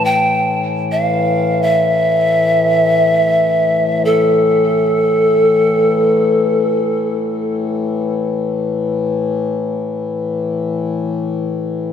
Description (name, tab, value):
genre	world meditative, free-time meditation music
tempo	free time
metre	none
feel	none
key	unclear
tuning	A4 = 439 Hz
part	breathy pan flute	melody	0.0-7.2 s	A4 to G5	-14 LUFS	right 1 dB	tape echo
part	hand-pumped harmonium	drone	0.0-11.9 s	A2 to E3	-18 LUFS	left 4 dB	none
room	wet spring reverb, RT60 2.0 s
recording	echo-heavy mix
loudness	-13 LUFS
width	side -8 dB against mid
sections	0.0-11.9 A section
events	none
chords	none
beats	free time